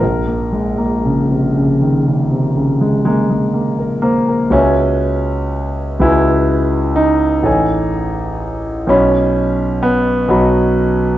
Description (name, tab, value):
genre	classical, impressionist solo piano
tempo	38-44 BPM (dotted quarters)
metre	9/8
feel	rubato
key	Bb minor, C# minor from 4.5 s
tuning	A4 = 440 Hz
part	clear concert grand piano	solo	0.0-11.2 s	A1 to B5	-12 LUFS	equal	none
room	moderate recital hall reverb, RT60 1.4 s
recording	nothing above 7.8 kHz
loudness	-13 LUFS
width	side -13 dB against mid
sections	0.0-4.5 A section; 4.5-11.2 B section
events	none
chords	0.0 Bbm7; 4.5 C#m7; 7.5 Amaj7#11; 8.9 Badd9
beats	| 0.01 1.56 3.06 | 4.53 6.03 7.46 | 8.90 10.31